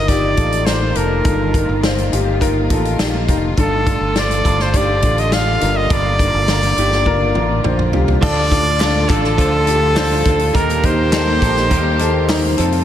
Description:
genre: piano-driven pop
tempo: 103 BPM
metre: 4/4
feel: straight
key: unclear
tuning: A4 = 441 Hz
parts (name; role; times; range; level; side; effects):
- bright trumpet; melody; 0.0-12.6 s; A4 to F5; -19 LUFS; equal; none
- warm baby grand piano; accompaniment; 0.0-12.8 s; G2 to G5; -20 LUFS; left 2 dB; wide subtle chorus
- rich studio string section; sustained chords; 0.0-12.8 s; C3 to G4; -25 LUFS; equal; none
- modern bright fingered electric bass; bass; 0.0-12.8 s; F1 to F2; -19 LUFS; equal; none
- natural country drum kit; drums; 0.1-12.8 s; crash cymbal, hi-hat, kick drum, snare drum, toms; -20 LUFS; equal; none
- direct-recorded clean electric guitar; riff; 8.2-12.8 s; D3 to Bb4; -24 LUFS; right 6 dB; none
- group handclap; percussion; 8.8-12.4 s; none; -33 LUFS; left 2 dB; none
room: wet lush hall reverb, RT60 2.4 s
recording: dreamy mix soaked in reverb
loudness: -13 LUFS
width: side -10 dB against mid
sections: 0.0-8.2 A section; 8.2-12.8 B section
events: grand piano fill 2.4-3.6; drum fill 7.1-8.2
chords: 0.0 Ebsus2; 3.6 Dm/G; 5.6 Bb/G; 8.2 Dm; 10.6 Eb

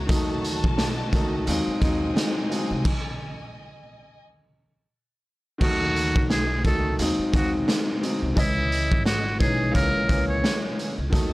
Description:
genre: hip hop, boom-bap hip-hop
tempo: 87 BPM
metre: 4/4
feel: swing 57% on 16ths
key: C# harmonic minor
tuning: A4 = 440 Hz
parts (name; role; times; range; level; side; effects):
- warm studio string section; sustained chords; 0.0-4.2, 11.1-11.3 s; F#4 to A5; -35 LUFS; left 1 dB; high-pass filter, low-pass filter
- upright bass; bass; 0.0-11.3 s; G#1 to D#2; -29 LUFS; equal; none
- clear upright piano; accompaniment; 0.1-11.3 s; C#2 to D#5; -26 LUFS; left 1 dB; cassette tape, high-pass filter, low-pass filter
- raw garage drum kit; drums; 0.1-11.3 s; crash cymbal, hi-hat, kick drum, snare drum; -25 LUFS; equal; none
- trumpet with metal mute; melody; 5.6-10.6 s; E4 to C#5; -27 LUFS; equal; high-pass filter, low-pass filter, tape echo
room: little or no reverb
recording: dry, gritty hardware recording, transformer saturation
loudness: -21 LUFS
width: side -19 dB against mid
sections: 0.0-5.6 A section; 5.6-11.3 A section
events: stop 2.9-5.6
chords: 0.1 D#dim; 1.5 G#7/D#; 2.9 D#sus4; 4.2 N.C.; 5.6 D#dim; 7.0 G#7/D#; 8.4 C#madd9; 9.7 C#m6

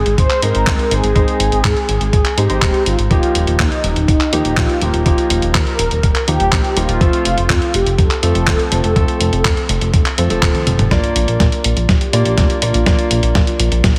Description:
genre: italo disco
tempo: 123 BPM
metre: 4/4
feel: straight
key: Bb major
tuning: A4 = 438 Hz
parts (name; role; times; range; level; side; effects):
- mellow synth brass; melody; 0.0-13.6 s; Eb4 to C5; -22 LUFS; equal; chorus, cassette tape, tape echo
- warm grand piano; stabs; 0.0-14.0 s; F3 to D5; -23 LUFS; equal; none
- chorused synth bass; bass; 0.0-13.9 s; Eb1 to Bb2; -20 LUFS; equal; none
- dusty soul sampler-style drum kit; drums; 0.1-14.0 s; handclaps, hi-hat, snare drum, toms; -22 LUFS; equal; none
- electronic kick drum; drums; 0.2-13.9 s; none; -18 LUFS; equal; none
room: light reverb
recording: heavily compressed radio sound, multiband compression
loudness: -15 LUFS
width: mono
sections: 0.0-10.9 A section; 10.9-14.0 B section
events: drum fill 10.5-10.9, 10.9-14.0; filter sweep on analog polysynth 10.9-14.0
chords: 0.0 Ab; 3.1 Ebadd9; 7.0 F; 10.9 Bb

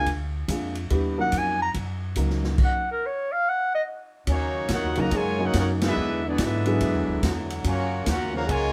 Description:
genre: jazz, big band swing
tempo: 142 BPM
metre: 4/4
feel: swing 65% on 8ths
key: Eb minor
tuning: A4 = 440 Hz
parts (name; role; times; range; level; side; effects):
- breathy clarinet; melody; 0.0-3.8 s; Bb4 to Bb5; -27 LUFS; equal; none
- warm grand piano; accompaniment; 0.0-7.2 s; Gb3 to Cb5; -31 LUFS; equal; none
- upright bass; bass; 0.0-8.7 s; Db2 to G#2; -30 LUFS; equal; none
- swinging big-band drum kit; drums; 0.1-8.6 s; crash cymbal, hi-hat, kick drum, ride cymbal, snare drum; -32 LUFS; equal; none
- clear trumpet section; melody; 4.3-8.7 s; Bb3 to Bb5; -32 LUFS; equal; none
- warm trombone section; second line; 4.3-8.7 s; Db3 to Gb4; -32 LUFS; equal; none
- warm trombone section; sustained chords; 4.3-8.7 s; Db3 to E4; -36 LUFS; equal; none
room: moderate plate reverb, RT60 1.1 s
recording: heard from further back in the room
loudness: -25 LUFS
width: mono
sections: 0.0-4.3 A section; 4.3-8.7 B section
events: clarinet solo 0.0-4.3; band accent 5.8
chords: 0.1 Bb7; 0.9 Ebm7; 6.0 E9; 7.6 Gbmaj7

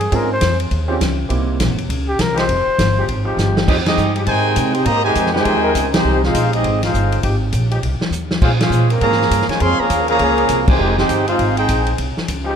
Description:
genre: jazz, big band swing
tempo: 202 BPM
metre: 4/4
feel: swing 62% on 8ths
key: F minor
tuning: A4 = 440 Hz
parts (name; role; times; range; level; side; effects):
- dark trumpet; melody; 0.0-3.1 s; G4 to C5; -20 LUFS; left 2 dB; none
- upright bass; bass; 0.0-12.6 s; E1 to C3; -19 LUFS; equal; none
- vintage drum kit; drums; 0.0-12.4 s; crash cymbal, hi-hat, kick drum, ride cymbal, snare drum; -21 LUFS; left 1 dB; none
- clear grand piano; accompaniment; 0.1-1.7 s; Bb3 to Ab4; -24 LUFS; right 6 dB; none
- dark trombone section; sustained chords; 0.1-12.5 s; Db3 to Bb4; -25 LUFS; left 1 dB; none
- warm trumpet section; melody; 3.7-12.0 s; C4 to C6; -19 LUFS; equal; none
- warm trombone section; second line; 3.7-12.0 s; C3 to Ab4; -20 LUFS; right 2 dB; none
room: light reverb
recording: dark, warm production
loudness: -14 LUFS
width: side -8 dB against mid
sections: 0.0-3.7 A section; 3.7-12.6 B section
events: trumpet solo 0.0-3.7; drum fill 3.4, 8.1; band accent 3.8, 5.9, 8.6, 10.6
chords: 0.0 Dbmaj7; 1.3 C7#9; 2.5 Fm9; 8.4 Bbm9; 10.8 Fm9

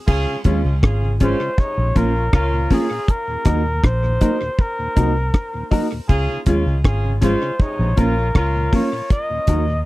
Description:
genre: roots reggae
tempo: 80 BPM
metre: 4/4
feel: straight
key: unclear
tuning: A4 = 435 Hz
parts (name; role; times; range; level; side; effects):
- clear horn section; second line; 0.1-8.9 s; C3 to Ab4; -27 LUFS; equal; tape echo
- vintage muted fingered electric bass; bass; 0.1-9.8 s; Ab1 to Eb2; -19 LUFS; equal; none
- deep reggae drum kit; drums; 0.1-9.7 s; crash cymbal, hi-hat, kick drum, rim click; -17 LUFS; equal; none
- mellow tonewheel organ; accompaniment; 0.3-9.8 s; Eb2 to Eb4; -27 LUFS; left 1 dB; none
- mellow electric guitar; accompaniment; 0.5-9.6 s; Ab3 to Gb4; -25 LUFS; right 3 dB; tape echo
- clear upright piano; stabs; 0.5-9.6 s; Db4 to Bb4; -25 LUFS; left 5 dB; none
- warm flugelhorn; melody; 1.2-9.8 s; Ab4 to Eb5; -24 LUFS; equal; tape echo
room: little or no reverb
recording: dry, close 1970s-style studio recording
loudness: -16 LUFS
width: side -18 dB against mid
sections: 0.1-9.9 A section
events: none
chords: 0.1 Db; 1.6 Bbm; 3.1 Ebm; 6.1 Db; 7.6 Bbm; 9.1 Ebm

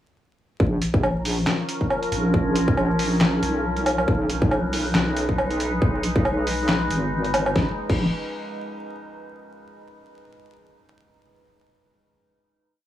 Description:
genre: deep dubstep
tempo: 138 BPM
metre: 4/4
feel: swing 56% on 16ths, half-time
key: Bb phrygian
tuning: A4 = 439 Hz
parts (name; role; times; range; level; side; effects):
- overtone-sweeping drone; sustained chords; 1.1-7.8 s; F3 to B4; -27 LUFS; equal; chorus, built-in reverb
- deep soft wobble bass; bass; 0.6-8.1 s; G#1 to Cb2; -24 LUFS; equal; chorus
- electronic kick drum; drums; 0.6-8.0 s; none; -23 LUFS; equal; distortion
- trip hop sampler-style drum kit; drums; 0.8-8.0 s; crash cymbal, handclaps, hi-hat, snare drum, woodblock; -24 LUFS; equal; none
room: light reverb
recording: vinyl crackle, small room ambience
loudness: -20 LUFS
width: side -12 dB against mid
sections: 0.6-7.6 drop; 7.6-9.3 final chord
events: drop 0.6-7.6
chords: 0.6 Bbm; 4.1 B6; 7.6 Bbm

